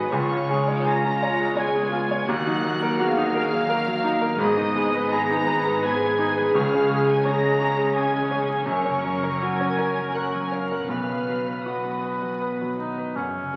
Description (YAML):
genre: cinematic, emotional film score for orchestra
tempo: 79-87 BPM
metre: 3/4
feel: rubato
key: unclear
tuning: A4 = 440 Hz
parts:
  - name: dark studio violin section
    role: melody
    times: 0.0-13.6 s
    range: C#5 to A#6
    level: -34 LUFS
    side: equal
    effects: none
  - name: dark studio violin section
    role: second line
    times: 0.0-13.6 s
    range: C#5 to A#5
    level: -33 LUFS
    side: equal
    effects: none
  - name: clear baby grand piano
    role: accompaniment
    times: 0.0-13.6 s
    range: B1 to C#5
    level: -28 LUFS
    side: equal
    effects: none
  - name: warm chamber viola section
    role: accompaniment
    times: 0.0-13.6 s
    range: A#3 to B4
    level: -30 LUFS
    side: equal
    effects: none
  - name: warm French horn section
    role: sustained chords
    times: 0.0-12.8 s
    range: F#3 to B4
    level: -34 LUFS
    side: equal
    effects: none
  - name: concert harp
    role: arpeggios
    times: 0.0-13.6 s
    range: F#2 to C#6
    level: -36 LUFS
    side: equal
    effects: none
  - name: dark studio double bass section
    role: bass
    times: 0.0-13.6 s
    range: F#1 to F#2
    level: -38 LUFS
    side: equal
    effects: none
  - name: warm studio cello section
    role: bass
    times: 0.0-13.6 s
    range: C#2 to D#3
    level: -37 LUFS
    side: equal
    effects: none
  - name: clear clarinet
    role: second line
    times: 0.1-12.8 s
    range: E#4 to B4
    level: -38 LUFS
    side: equal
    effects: none
  - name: mellow hollow concert flute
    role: second line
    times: 0.1-12.8 s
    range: G#5 to C#6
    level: -37 LUFS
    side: equal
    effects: none
  - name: warm cor anglais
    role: melody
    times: 12.8-13.6 s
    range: C#4 to D#4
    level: -33 LUFS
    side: equal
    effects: none
room: wet recital hall reverb, RT60 1.3 s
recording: very old 78 rpm record, vinyl crackle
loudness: -23 LUFS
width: mono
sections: 0.0-13.2 A section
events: none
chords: 0.1 C#; 2.3 D#madd9; 4.4 G#m; 6.6 C#5; 8.7 F#; 10.9 B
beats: | 0.12 0.86 1.58 | 2.29 3.00 3.71 | 4.40 5.13 5.84 | 6.55 7.25 7.96 | 8.68 9.42 10.15 | 10.90 11.66 12.41 | 13.16